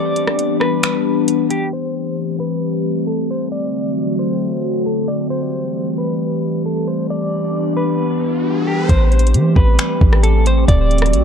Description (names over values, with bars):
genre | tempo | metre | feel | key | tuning
hip hop, atmospheric cloud-rap | 134 BPM | 4/4 | half-time | A dorian | A4 = 440 Hz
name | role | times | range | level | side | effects
clean electric guitar | melody | 0.0-11.2 s | G4 to D5 | -23 LUFS | left 1 dB | tremolo, ping-pong delay
warbly tape-like pad | sustained chords | 0.0-11.2 s | D3 to G4 | -18 LUFS | left 2 dB | chorus, built-in reverb, sidechain pumping
smooth R&B drum kit | drums | 0.2-1.6, 8.9-11.2 s | finger snaps, hi-hat, kick drum, rim click | -16 LUFS | equal | none
riser | sound effects | 7.9-8.9 s | none | -29 LUFS | right 2 dB | none
warm 808-style bass | bass | 8.9-11.2 s | D1 to E3 | -13 LUFS | equal | none
room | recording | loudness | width
light reverb | dark, warm production, low-pass filter | -15 LUFS | side -7 dB against mid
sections
0.0-1.7 A section; 1.7-8.9 B section; 8.9-11.2 A section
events
break 0.0-1.7; filter sweep 1.7-8.9; riser 7.9-8.9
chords
0.0 Em7; 1.7 Am7; 3.5 D7; 5.3 Am7; 7.1 Em7; 8.9 Am7; 10.7 D7